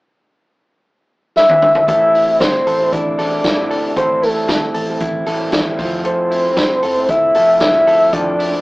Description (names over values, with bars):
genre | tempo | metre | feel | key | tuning
jangly indie pop | 115 BPM | 4/4 | straight | unclear | A4 = 440 Hz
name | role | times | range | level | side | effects
soft octave-layered synth lead | melody | 1.4-8.6 s | A4 to E5 | -13 LUFS | equal | chorus
vintage drum kit | drums | 1.4-8.5 s | hi-hat, kick drum, snare drum, toms | -21 LUFS | equal | none
electric guitar through a small old amp | accompaniment | 1.9-8.6 s | A2 to E4 | -24 LUFS | right 2 dB | spring reverb
direct-recorded clean electric guitar | arpeggios | 1.9-8.6 s | A2 to A4 | -23 LUFS | equal | none
vintage muted picked electric bass | bass | 1.9-8.6 s | F1 to A1 | -32 LUFS | equal | none
room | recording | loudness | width
moderate studio reverb, RT60 0.6 s | rough rehearsal-room recording, tube saturation, AM radio sound | -12 LUFS | side -22 dB against mid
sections
0.0-1.9 A section; 1.9-8.6 B section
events
drum fill 1.4-1.9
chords
0.0 N.C.; 1.9 Am7; 5.8 Fmaj7